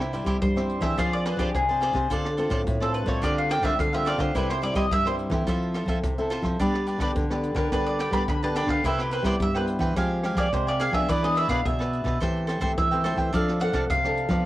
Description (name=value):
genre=samba and choro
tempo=107 BPM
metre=4/4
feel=straight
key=unclear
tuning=A4 = 440 Hz
part: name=cavaquinho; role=accompaniment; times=0.0-14.4 s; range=D4 to Ab5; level=-31 LUFS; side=right 2 dB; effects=cassette tape, plate reverb
part: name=nylon-string guitar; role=accompaniment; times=0.0-14.5 s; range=G2 to A4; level=-30 LUFS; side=left 1 dB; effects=cassette tape, plate reverb
part: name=nylon-string guitar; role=bass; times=0.0-14.4 s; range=A2 to G3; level=-28 LUFS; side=equal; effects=none
part: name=jazz brush drum kit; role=drums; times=0.0-14.4 s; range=hi-hat, kick drum, rim click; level=-30 LUFS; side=equal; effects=cassette tape
part: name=bowl-back mandolin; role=second line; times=0.4-14.4 s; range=G4 to B5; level=-27 LUFS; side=equal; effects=cassette tape, plate reverb
room=light reverb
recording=home recording on cassette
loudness=-22 LUFS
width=side -16 dB against mid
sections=0.0-14.5 A section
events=mandolin solo 0.0-14.5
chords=0.0 C; 1.0 Fm6; 2.1 Dm7; 3.2 G7sus4/D; 4.3 C; 5.5 Fmaj7; 6.6 G; 8.8 Cmaj7; 10.0 Fmadd9; 11.1 E7; 12.2 Am7/E; 13.3 F6